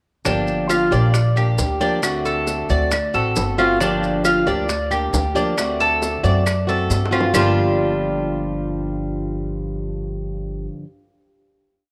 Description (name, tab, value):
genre	latin, Cuban son and guajira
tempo	136 BPM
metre	4/4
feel	straight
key	G minor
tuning	A4 = 440 Hz
part	flamenco guitar	accompaniment	0.2-10.9 s	G2 to G4	-26 LUFS	equal	none
part	Cuban tres	arpeggios	0.3-10.7 s	G3 to D5	-24 LUFS	equal	none
part	upright bass	bass	0.3-10.7 s	G1 to G2	-25 LUFS	equal	none
part	bongos	percussion	0.3-7.5 s	none	-32 LUFS	equal	none
part	maracas	percussion	0.3-7.4 s	none	-33 LUFS	equal	none
part	claves	percussion	0.7-7.4 s	none	-30 LUFS	equal	none
room	moderate spring reverb, RT60 2.7 s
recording	none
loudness	-20 LUFS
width	mono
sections	0.3-7.3 montuno (vamp); 7.3-10.9 final chord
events	drum fill 6.9-7.3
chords	0.3 Gm7; 2.0 D7; 3.8 Gm7; 5.6 D7; 7.3 Gm7